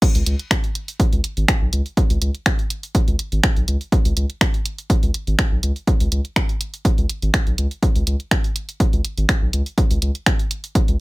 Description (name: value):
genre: minimal techno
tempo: 123 BPM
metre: 4/4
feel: swing 53% on 16ths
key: unclear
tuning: A4 = 439 Hz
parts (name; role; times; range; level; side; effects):
- electronic kick drum; drums; 0.0-10.9 s; none; -18 LUFS; equal; none
- punchy analog drum machine; drums; 0.0-11.0 s; crash cymbal, finger snaps, hi-hat; -24 LUFS; right 1 dB; none
- saturated sub bass; bass; 0.1-11.0 s; G#1 to C#2; -20 LUFS; equal; sidechain pumping
room: little or no reverb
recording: none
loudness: -17 LUFS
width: side -21 dB against mid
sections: 0.0-11.0 A section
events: drop 0.0-11.0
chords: none